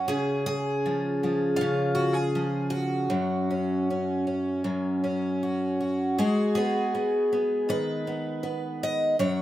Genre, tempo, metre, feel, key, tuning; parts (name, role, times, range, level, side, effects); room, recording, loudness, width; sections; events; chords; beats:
folk, solo fingerstyle acoustic guitar; 79 BPM; 4/4; straight; A4 = 443 Hz
picked twelve-string acoustic guitar; solo; 0.0-9.4 s; F#2 to D#5; -24 LUFS; equal
wet small room reverb, RT60 0.5 s; rough home demo mix; -24 LUFS; side -13 dB against mid
0.0-6.2 A section; 6.2-9.4 B section
0.1 C#; 3.1 F#5; 6.2 G#m
| 0.09 0.84 1.60 2.35 | 3.11 3.87 4.63 5.41 | 6.19 6.95 7.70 8.45 | 9.20